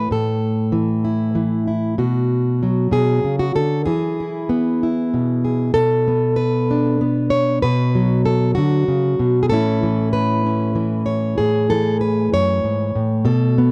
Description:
folk, solo fingerstyle acoustic guitar; 64 BPM (dotted quarters); 6/8; straight; A major; A4 = 441 Hz
fingerpicked plugged-in steel-string acoustic guitar; solo; 0.0-13.7 s; F#2 to C#5; -18 LUFS; equal
small room ambience; dry, close 1970s-style studio recording; -19 LUFS; mono
0.0-5.7 A section; 5.7-13.7 B section
0.0 A5; 2.0 Bm; 3.9 E; 5.7 Bm7; 9.5 Amaj7

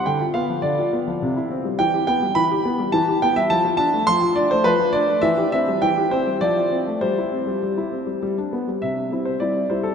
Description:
classical-period piano sonatina; 103 BPM; 3/4; straight; C major; A4 = 440 Hz
clear concert grand piano; solo; 0.0-9.9 s; C3 to C6; -18 LUFS; equal
wet cathedral reverb, RT60 5.2 s; in a vast, echoing space, nothing above 10.5 kHz; -18 LUFS; side -7 dB against mid
0.0-8.8 A section; 8.8-9.9 B section
0.1 Bdim/D; 1.2 C; 1.8 Em; 3.5 Dm/F; 5.2 C/E; 6.4 Dm7/F; 7.0 C/G; 8.2 G; 8.8 C

